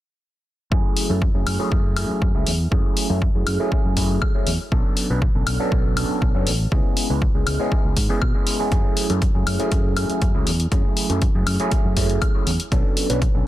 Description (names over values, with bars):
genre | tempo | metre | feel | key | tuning
filtered disco house | 120 BPM | 4/4 | straight | F# minor | A4 = 440 Hz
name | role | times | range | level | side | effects
overdriven tine electric piano | accompaniment | 0.7-13.5 s | F#3 to B4 | -24 LUFS | right 1 dB | phaser, sidechain pumping, low-pass filter
fingered electric bass | bass | 0.7-13.4 s | A1 to B2 | -23 LUFS | equal | sidechain pumping, low-pass filter
electronic kick drum | drums | 0.7-13.3 s | none | -21 LUFS | equal | none
electronic hi-hat and woodblock | drums | 1.0-13.3 s | none | -27 LUFS | left 2 dB | sidechain pumping on hats, sidechain pumping on perc
room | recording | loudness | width
little or no reverb | dense, heavily limited modern master | -18 LUFS | side -14 dB against mid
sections
0.7-13.5 A section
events
filter sweep 0.7-13.5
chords
0.7 F#m9; 4.7 Bm7; 6.7 C#m7; 8.7 F#m9; 12.7 Bm7